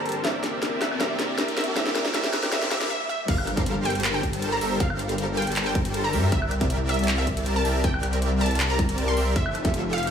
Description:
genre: future bass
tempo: 158 BPM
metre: 4/4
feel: half-time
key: G dorian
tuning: A4 = 440 Hz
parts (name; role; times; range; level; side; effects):
- wide unison pluck; melody; 0.0-10.1 s; E5 to C6; -30 LUFS; right 1 dB; sidechain pumping, tape echo
- felt-muted upright piano; accompaniment; 0.0-3.3 s; E3 to A5; -36 LUFS; right 2 dB; sidechain pumping, dub echo
- airy breathy pad; sustained chords; 0.0-2.9 s; G2 to A5; -39 LUFS; left 1 dB; chorus, sidechain pumping
- supersaw chords; riff; 0.0-10.1 s; F3 to A5; -28 LUFS; equal; analog chorus, sidechain pumping, low-pass filter
- riser, swell and impact; sound effects; 0.0-4.8 s; none; -34 LUFS; equal; none
- trap drum kit; drums; 0.1-10.1 s; crash cymbal, handclaps, hi-hat, snare drum, woodblock; -29 LUFS; left 1 dB; small room reverb
- wide detuned saw bass; bass; 3.3-10.1 s; F1 to G2; -26 LUFS; equal; chorus, sidechain pumping
- electronic kick drum; drums; 3.3-9.7 s; none; -27 LUFS; equal; small room reverb
room: light reverb, digital ambience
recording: high-pass filter, small room ambience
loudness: -22 LUFS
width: side -8 dB against mid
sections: 0.0-3.3 A section; 3.3-10.1 B section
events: build-up 0.0-3.3; drum fill 0.0-2.9; riser 0.0-2.9; filter sweep on synth pluck 0.0-3.3; filter sweep on analog synth pad 0.0-3.3; filter sweep 0.0-3.3; swell 2.5-3.3; break 2.9-3.3; drop 3.3-10.1; impact 3.3-4.8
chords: 0.2 C7; 3.3 Gm11; 6.3 C7; 9.4 Fmaj9

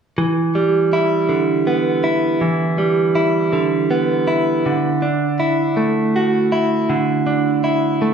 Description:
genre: pop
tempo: 54 BPM (dotted quarters)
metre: 6/8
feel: straight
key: E minor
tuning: A4 = 440 Hz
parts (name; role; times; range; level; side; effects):
- direct-recorded clean electric guitar; solo; 0.2-8.1 s; D3 to F#4; -15 LUFS; right 2 dB; spring reverb
room: wet large studio reverb, RT60 1.3 s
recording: band playing live in one room, small room ambience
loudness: -15 LUFS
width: side -7 dB against mid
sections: 0.2-8.1 A section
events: none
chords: 0.2 Em7; 4.7 Dadd9

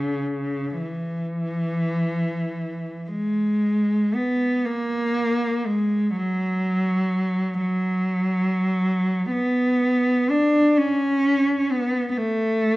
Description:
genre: classical, free, expressive piece for unaccompanied cello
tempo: 21-46 BPM (dotted quarters)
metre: 6/8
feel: rubato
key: C# dorian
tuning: A4 = 443 Hz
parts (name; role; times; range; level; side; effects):
- rich cello; solo; 0.0-12.8 s; C#3 to D4; -20 LUFS; equal; none
room: wet recital hall reverb, RT60 1.4 s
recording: worn, warbling old tape, cassette tape, warbly pitch drift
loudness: -20 LUFS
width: side -19 dB against mid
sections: 0.0-3.1 A section; 3.1-12.8 B section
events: none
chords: none

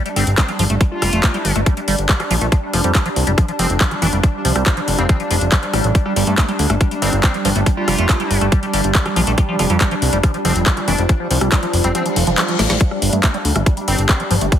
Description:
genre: psychedelic trance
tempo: 140 BPM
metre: 4/4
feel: straight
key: unclear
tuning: A4 = 437 Hz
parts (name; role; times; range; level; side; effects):
- pulsing gated texture; sustained chords; 0.0-14.6 s; G3 to D4; -23 LUFS; right 1 dB; chorus, built-in reverb, sidechain pumping
- liquid acid bass; riff; 0.0-14.6 s; E3 to A3; -23 LUFS; moving between left 3 dB and right 4 dB; phaser, auto-pan, sidechain pumping, ping-pong delay
- deep dark ambient pad; texture; 1.5-14.6 s; F4 to G5; -29 LUFS; equal; chorus, built-in reverb, sidechain pumping
- garage drum kit; drums; 0.1-14.6 s; handclaps, hi-hat, rim click, snare drum; -21 LUFS; left 1 dB; none
- metallic wobble bass; second line; 0.2-14.2 s; C4 to F4; -26 LUFS; left 2 dB; chorus, cassette tape, sidechain pumping, high-pass filter, ping-pong delay
- fat analog bass; bass; 0.2-14.5 s; F1 to G2; -18 LUFS; equal; none
- electronic kick drum; drums; 0.4-14.6 s; none; -15 LUFS; equal; none
- reverse cymbal; sound effects; 12.1-12.8 s; none; -26 LUFS; left 8 dB; none
room: light reverb, digital ambience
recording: heavily compressed radio sound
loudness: -14 LUFS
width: side -10 dB against mid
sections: 0.0-14.6 A section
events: fade-in on ambient pad 0.0-14.6; kick drops out 11.9-12.8; reverse cymbal 12.1-12.8; drum fill 12.6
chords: 0.0 G5; 2.5 F5; 5.9 G5; 9.4 F5; 12.8 G5

